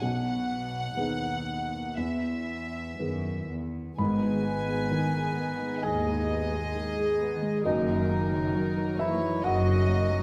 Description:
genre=cinematic, emotional film score for orchestra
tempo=58-69 BPM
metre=4/4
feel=rubato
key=G# minor from 4.0 s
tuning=A4 = 440 Hz
part: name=warm studio violin section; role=melody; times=0.0-10.2 s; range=D#4 to F#5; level=-40 LUFS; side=equal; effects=none
part: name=felt-muted upright piano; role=accompaniment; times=0.0-10.2 s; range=B1 to B5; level=-34 LUFS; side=equal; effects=none
part: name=warm symphonic cello section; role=bass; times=0.0-10.2 s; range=D#2 to B2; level=-36 LUFS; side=equal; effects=none
part: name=clear clarinet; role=second line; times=4.0-10.2 s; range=D#4 to B4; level=-35 LUFS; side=equal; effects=none
part: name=warm symphonic violin section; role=second line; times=4.0-10.2 s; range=A#4 to G#5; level=-39 LUFS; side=equal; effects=none
part: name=dark symphonic viola section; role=accompaniment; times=4.0-10.2 s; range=D#3 to B3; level=-38 LUFS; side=equal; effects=none
part: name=mellow French horn section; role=sustained chords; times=4.0-10.2 s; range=D#3 to B3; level=-36 LUFS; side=equal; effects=none
part: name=concert harp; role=arpeggios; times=4.0-10.2 s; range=F#2 to A#4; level=-38 LUFS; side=equal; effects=none
part: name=warm symphonic double bass section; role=bass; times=4.0-10.2 s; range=F#1 to D#2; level=-36 LUFS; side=equal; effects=none
room=moderate scoring stage reverb, RT60 1.8 s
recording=none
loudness=-29 LUFS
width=mono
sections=0.0-4.0 A section; 4.0-10.2 B section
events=none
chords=0.0 B6; 2.0 Emaj7; 4.0 G#m; 7.7 D#m/F#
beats=| 0.02 0.97 1.98 3.00 | 3.99 4.92 5.83 6.74 | 7.66 8.55 9.44

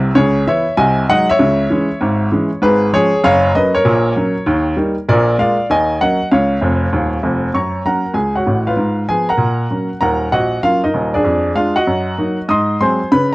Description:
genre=jazz, stride piano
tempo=195 BPM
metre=4/4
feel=swing 65% on 8ths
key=F# major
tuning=A4 = 440 Hz
part: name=clear upright piano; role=solo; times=0.0-13.3 s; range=D#1 to D#6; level=-12 LUFS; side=equal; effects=cassette tape
room=light reverb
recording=home recording on cassette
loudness=-13 LUFS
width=side -20 dB against mid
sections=0.0-7.5 A section; 7.5-13.3 B section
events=upright piano fill 6.6-7.5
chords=0.2 C#m7; 0.8 G#7/B#; 1.4 C#m; 2.6 C#7/G#; 3.2 F#; 3.9 F#/A#; 4.5 D#7; 5.1 A#7; 5.7 D#m7; 6.3 C#; 7.5 F#; 8.8 Fdim/Ab; 9.4 F#/A#; 10.0 D#m7; 11.3 Ddim/F; 11.9 D#m/F#; 12.5 G#7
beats=| 0.17 0.47 0.78 1.09 | 1.40 1.70 2.01 2.32 | 2.63 2.93 3.24 3.55 | 3.86 4.16 4.47 4.78 | 5.08 5.39 5.70 6.01 | 6.31 6.62 6.93 7.24 | 7.54 7.85 8.16 8.47 | 8.78 9.09 9.40 9.71 | 10.02 10.33 10.64 10.95 | 11.26 11.57 11.88 12.19 | 12.50 12.81 13.12

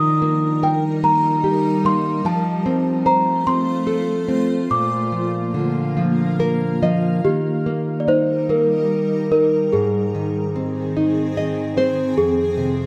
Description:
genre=children's music, lullaby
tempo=49 BPM (dotted quarters)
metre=6/8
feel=rubato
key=Eb major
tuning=A4 = 439 Hz
part: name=celesta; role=melody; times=0.0-12.9 s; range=G4 to Eb6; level=-22 LUFS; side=equal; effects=none
part: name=nylon-string guitar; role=accompaniment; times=0.0-12.9 s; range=F2 to Eb5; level=-23 LUFS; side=equal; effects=none
part: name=granular cloud pad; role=sustained chords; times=0.0-12.9 s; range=Eb3 to F5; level=-28 LUFS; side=equal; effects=built-in reverb
room=light reverb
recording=close, detailed microphones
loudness=-19 LUFS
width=mono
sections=0.0-7.2 A section; 7.2-12.9 B section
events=nylon-string guitar fill 6.0-7.2, 11.0-12.2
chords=0.0 Eb; 2.2 F; 4.7 Bb; 7.2 Eb; 9.7 Ab; 12.2 Fm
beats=1.03 | 2.25 3.47 | 4.70 5.97 | 7.24 8.49 | 9.73 10.96 | 12.17

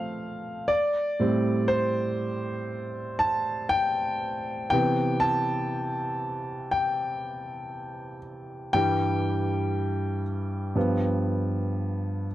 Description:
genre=pop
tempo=60 BPM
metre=4/4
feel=straight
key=C major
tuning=A4 = 440 Hz
part: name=warm concert grand piano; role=solo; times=0.0-12.3 s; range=G2 to A5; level=-25 LUFS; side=equal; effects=none
room=light reverb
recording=dry, close 1970s-style studio recording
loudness=-24 LUFS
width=side -14 dB against mid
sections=0.0-12.3 A section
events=grand piano solo 0.0-12.3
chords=0.0 F; 0.7 Am7; 4.7 Cmaj7; 8.7 Em/G; 10.8 G7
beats=| 0.70 1.71 2.71 3.72 | 4.72 5.72 6.73 7.73 | 8.74 9.75 10.76 11.79

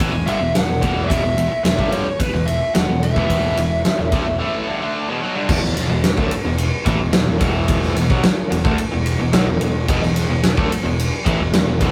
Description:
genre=hard rock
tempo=109 BPM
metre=4/4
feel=straight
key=unclear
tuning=A4 = 442 Hz
part: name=lead guitar through a small cranked amp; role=melody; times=0.0-4.9 s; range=B4 to G#5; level=-25 LUFS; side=equal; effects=overdrive
part: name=biting overdriven guitar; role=riff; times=0.0-11.9 s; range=E2 to D4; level=-28 LUFS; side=equal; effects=none
part: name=high-gain distorted guitar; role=riff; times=0.0-5.5, 9.9-11.9 s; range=E2 to D4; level=-32 LUFS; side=equal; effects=none
part: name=tight distorted guitar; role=riff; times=0.0-11.9 s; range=E2 to D4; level=-28 LUFS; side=equal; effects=distortion
part: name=fuzz picked electric bass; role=bass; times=0.0-11.9 s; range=E1 to D2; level=-24 LUFS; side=equal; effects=overdrive
part: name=huge arena drum kit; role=drums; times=0.0-11.9 s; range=crash cymbal, kick drum, ride cymbal, snare drum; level=-22 LUFS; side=equal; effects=none
room=light reverb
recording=rough rehearsal-room recording, tube saturation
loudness=-18 LUFS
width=mono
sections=0.0-5.5 A section; 5.5-11.9 B section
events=break 4.4-5.5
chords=0.0 E5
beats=0.01 0.56 | 1.10 1.66 2.20 2.75 | 3.30 3.85 4.40 4.95 | 5.50 6.05 6.60 7.15 | 7.70 8.24 8.79 9.34 | 9.89 10.44 10.99 11.54

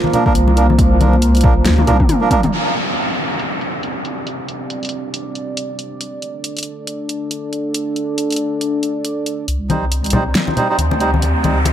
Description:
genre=deep dubstep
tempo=138 BPM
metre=4/4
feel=swing 58% on 16ths, half-time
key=unclear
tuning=A4 = 440 Hz
part: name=dark analog pad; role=sustained chords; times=0.0-11.7 s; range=Bb3 to D5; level=-22 LUFS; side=equal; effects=chorus
part: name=congas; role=percussion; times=0.0-2.5, 9.7-11.7 s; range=none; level=-21 LUFS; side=left 4 dB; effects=dub echo
part: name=melodica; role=stabs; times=0.1-2.4, 9.7-11.6 s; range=F3 to C5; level=-20 LUFS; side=right 3 dB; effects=dub echo
part: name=deep house drum kit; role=drums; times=0.1-11.7 s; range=hi-hat, snare drum, toms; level=-21 LUFS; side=left 1 dB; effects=overdrive, low-pass filter on hats, low-pass filter on snare, low-pass filter on toms
part: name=deep soft wobble bass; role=bass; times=0.3-2.1, 9.5-11.7 s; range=C2 to D2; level=-15 LUFS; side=equal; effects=chorus
part: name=electronic kick drum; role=drums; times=0.3-2.4 s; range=none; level=-16 LUFS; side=equal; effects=overdrive
part: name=downlifter and riser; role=sound effects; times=2.5-6.0, 10.1-11.7 s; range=none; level=-24 LUFS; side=equal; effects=none
room=moderate spring reverb, RT60 1.5 s, digital ambience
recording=none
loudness=-15 LUFS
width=side -10 dB against mid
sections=0.0-2.5 A section; 2.5-9.5 B section; 9.5-11.7 C section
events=drum fill 1.7-2.5; filter sweep on drum 2.5-9.5; build-up 9.5-11.7; filter sweep on analog synth pad 9.5-11.7; riser 10.1-11.7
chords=0.0 Bb; 2.5 C5; 6.0 D5; 9.5 Cm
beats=0.35 | 0.79 1.22 1.66 2.09 | 2.52 2.96 3.40 3.83 | 4.26 4.70 5.13 5.57 | 6.00 6.44 6.87 7.31 | 7.74 8.18 8.61 9.05 | 9.48 9.92 10.35 10.79 | 11.22 11.66

